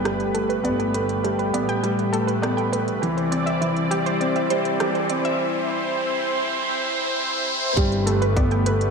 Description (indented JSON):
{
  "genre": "piano and strings electronica",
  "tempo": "101 BPM",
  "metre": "4/4",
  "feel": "straight",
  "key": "G major",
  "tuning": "A4 = 442 Hz",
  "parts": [
    { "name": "lush unison pad", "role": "sustained chords", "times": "0.0-8.9 s", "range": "A3 to D5", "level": "-25 LUFS", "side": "equal", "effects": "chorus, sidechain pumping" },
    { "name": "warbly dusty pluck", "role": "arpeggios", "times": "0.0-8.8 s", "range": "E4 to G5", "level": "-28 LUFS", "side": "right 3 dB", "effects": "chorus, sidechain pumping, tape echo" },
    { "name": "warm concert grand piano", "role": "riff", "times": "0.0-8.9 s", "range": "E3 to C4", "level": "-25 LUFS", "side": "equal", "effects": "tape echo" },
    { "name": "bright studio double bass section", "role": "bass", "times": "0.0-8.9 s", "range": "G1 to C2", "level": "-28 LUFS", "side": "equal", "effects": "sidechain pumping" },
    { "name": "riser", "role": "sound effects", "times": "1.5-7.8 s", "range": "none", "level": "-31 LUFS", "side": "right 1 dB", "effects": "none" },
    { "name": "organic electronic drum kit", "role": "drums", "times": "0.1-8.9 s", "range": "hi-hat, rim click", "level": "-32 LUFS", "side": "right 1 dB", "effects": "small room ambience" },
    { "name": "electronic kick drum", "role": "drums", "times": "7.8-8.5 s", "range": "none", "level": "-20 LUFS", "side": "equal", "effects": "small room ambience" }
  ],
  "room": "wet echo chamber reverb, RT60 2.1 s",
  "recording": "dark, warm production, high-pass filter",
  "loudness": "-20 LUFS",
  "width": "side -5 dB against mid",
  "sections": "0.0-7.8 A section; 7.8-8.9 B section",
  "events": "build-up 0.0-7.8; filter sweep 0.0-7.8; riser 1.5-7.8; drop 7.8-8.9",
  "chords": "0.0 Gadd9; 3.0 Cadd9; 7.8 Gadd9"
}